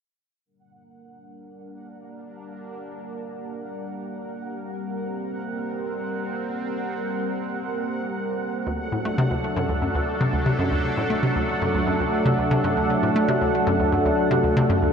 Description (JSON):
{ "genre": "ambient, sequencer-driven space music", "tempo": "117 BPM", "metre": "4/4", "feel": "straight", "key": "G harmonic minor", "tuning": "A4 = 438 Hz", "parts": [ { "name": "sweeping resonant pad", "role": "sustained chords", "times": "0.5-14.9 s", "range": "F#3 to Bb4", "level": "-25 LUFS", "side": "equal", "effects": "chorus" }, { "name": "bubbling stepped-filter texture", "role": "texture", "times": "1.1-14.9 s", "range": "F#5", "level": "-32 LUFS", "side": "right 4 dB", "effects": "chorus, built-in reverb" }, { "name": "hollow square pluck", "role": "riff", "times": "8.7-14.9 s", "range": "D2 to A3", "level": "-23 LUFS", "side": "equal", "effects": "chorus, ping-pong delay" } ], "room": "wet cathedral reverb, RT60 5.6 s", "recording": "in a vast, echoing space", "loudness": "-22 LUFS", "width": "side -7 dB against mid", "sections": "0.5-14.9 A section", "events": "fade-in on analog synth pad 0.5-14.9; fade-in on synth texture 0.5-14.9", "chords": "0.5 Gm; 8.7 D" }